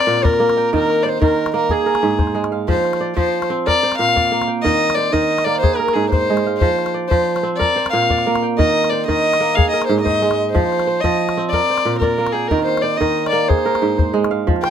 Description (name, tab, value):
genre	west african traditional, West African string and xylophone music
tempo	122 BPM (dotted quarters)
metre	12/8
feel	straight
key	unclear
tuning	A4 = 440 Hz
part	dark violin	melody	0.0-14.7 s	Ab4 to G5	-18 LUFS	left 3 dB	none
part	kora	arpeggios	0.0-14.7 s	Ab2 to G5	-18 LUFS	right 4 dB	none
part	calabash	percussion	0.0-14.7 s	none	-20 LUFS	left 2 dB	none
room	light reverb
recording	close, detailed microphones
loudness	-15 LUFS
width	side -8 dB against mid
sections	0.0-14.5 A section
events	none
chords	0.0 Bb; 0.7 Eb; 1.7 Ab; 2.7 F5; 3.7 Bb; 4.7 Eb; 5.6 Ab; 6.6 F5; 7.6 Bb; 8.6 Eb; 9.6 Ab; 10.5 F5; 11.5 Bb; 12.5 Eb; 13.5 Ab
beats	0.24 | 0.73 1.22 1.71 2.20 | 2.69 3.18 3.67 4.16 | 4.65 5.14 5.63 6.12 | 6.62 7.11 7.60 8.09 | 8.58 9.07 9.57 10.06 | 10.55 11.04 11.53 12.02 | 12.51 13.00 13.49 13.98 | 14.47